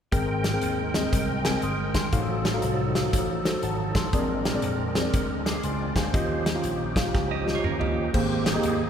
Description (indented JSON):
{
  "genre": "uptempo gospel",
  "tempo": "120 BPM",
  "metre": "4/4",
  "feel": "swing 64% on 8ths",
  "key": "Ab major",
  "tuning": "A4 = 441 Hz",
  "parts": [
    { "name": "mellow tine electric piano", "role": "accompaniment", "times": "0.1-8.9 s", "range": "Ab2 to F6", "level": "-28 LUFS", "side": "left 2 dB", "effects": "none" },
    { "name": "bright tonewheel organ", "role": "sustained chords", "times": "0.1-8.9 s", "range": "F3 to G5", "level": "-30 LUFS", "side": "right 2 dB", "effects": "fast rotary speaker, chorus vibrato" },
    { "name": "vintage slap bass", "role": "bass", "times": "0.1-8.9 s", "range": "G1 to F2", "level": "-31 LUFS", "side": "right 1 dB", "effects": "none" },
    { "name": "natural country drum kit", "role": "drums", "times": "0.1-8.8 s", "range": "crash cymbal, hi-hat, kick drum, snare drum, toms", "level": "-27 LUFS", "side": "equal", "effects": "none" },
    { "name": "clean electric guitar", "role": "second line", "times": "7.3-8.1 s", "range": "Bb3 to Eb5", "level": "-33 LUFS", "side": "right 7 dB", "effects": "none" }
  ],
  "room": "wet cathedral reverb, RT60 5.0 s",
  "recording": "recorded in a church or concert hall",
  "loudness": "-23 LUFS",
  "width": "side -8 dB against mid",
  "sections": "0.1-8.1 A section",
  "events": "drum fill 7.1-8.1",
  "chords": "0.1 Abmaj9; 2.1 F7b9/A; 4.1 Bb9; 6.1 Eb9; 8.1 Abmaj9"
}